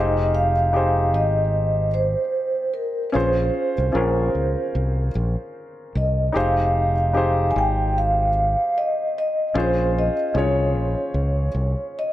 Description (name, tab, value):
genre	lush 1970s-style soul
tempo	75 BPM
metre	4/4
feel	swing 58% on 16ths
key	F minor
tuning	A4 = 440 Hz
part	vibraphone with soft mallets	melody	0.0-12.1 s	Bb4 to Ab5	-22 LUFS	right 1 dB	tape echo
part	warm baby grand piano	accompaniment	0.0-12.1 s	Db4 to F5	-26 LUFS	left 2 dB	none
part	fingered electric bass	bass	0.0-11.7 s	F1 to Db2	-22 LUFS	equal	none
room	light reverb, studio ambience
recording	none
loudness	-19 LUFS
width	side -14 dB against mid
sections	0.0-12.1 A section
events	none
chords	0.0 Fm9; 3.1 Bbm9; 6.3 Fm9; 9.5 Bbm9